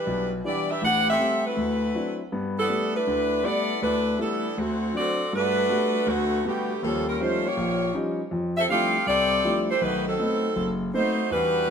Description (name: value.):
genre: jazz.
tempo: 160 BPM.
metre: 4/4.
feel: swing 64% on 8ths.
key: G major.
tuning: A4 = 440 Hz.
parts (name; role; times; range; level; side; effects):
clear saxophone section; melody; 0.0-11.7 s; D3 to F#5; -24 LUFS; equal; none.
warm concert grand piano; accompaniment; 0.1-11.7 s; F#1 to F#4; -27 LUFS; left 1 dB; none.
room: moderate echo chamber reverb, RT60 1.8 s.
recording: none.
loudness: -22 LUFS.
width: side -7 dB against mid.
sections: 0.0-5.3 A section; 5.3-11.7 B section.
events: none.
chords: 0.0 Em7; 0.8 Am7; 1.6 D9; 2.3 G69; 4.6 D7; 5.3 Gmaj9; 6.8 Eb9; 8.3 Fmaj13; 9.8 B7b9.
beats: 0.07 0.45 | 0.82 1.20 1.57 1.95 | 2.32 2.70 3.07 3.45 | 3.82 4.20 4.57 4.95 | 5.32 5.70 6.07 6.45 | 6.82 7.19 7.57 7.94 | 8.32 8.69 9.06 9.44 | 9.81 10.19 10.56 10.93 | 11.31 11.68.